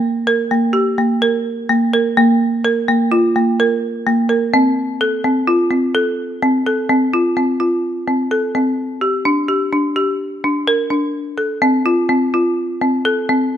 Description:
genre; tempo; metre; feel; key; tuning
contemporary instrumental, contemporary; 127 BPM; 5/4; straight; F major; A4 = 438 Hz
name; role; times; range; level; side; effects
folk marimba with hard mallets; solo; 0.0-13.6 s; Bb3 to Bb4; -14 LUFS; equal; none
room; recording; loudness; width
light reverb; close, detailed microphones; -14 LUFS; side -10 dB against mid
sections
0.0-6.9 A section; 6.9-13.6 B section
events
none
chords
none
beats
0.28 0.75 1.22 1.70 | 2.17 2.64 3.11 3.58 4.06 | 4.53 5.00 5.47 5.94 6.42 | 6.89 7.36 7.83 8.31 8.78 | 9.26 9.73 10.20 10.68 11.15 | 11.62 12.10 12.57 13.04 13.52

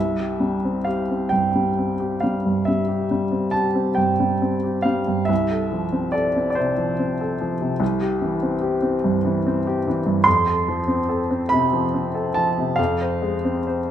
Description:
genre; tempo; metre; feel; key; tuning
classical, romantic nocturne for solo piano; 43-51 BPM (dotted quarters); 12/8; rubato; C major; A4 = 436 Hz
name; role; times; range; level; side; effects
clear upright piano; solo; 0.0-13.9 s; C2 to C6; -19 LUFS; equal; none
room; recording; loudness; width
moderate recital hall reverb, RT60 1.5 s; none; -19 LUFS; side -10 dB against mid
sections
0.0-13.9 A section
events
none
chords
0.0 C; 5.3 F/C; 7.8 C; 10.3 F; 12.8 Fm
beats
1.33 2.68 3.99 | 5.30 6.58 7.81 9.05 | 10.26 11.50 12.79

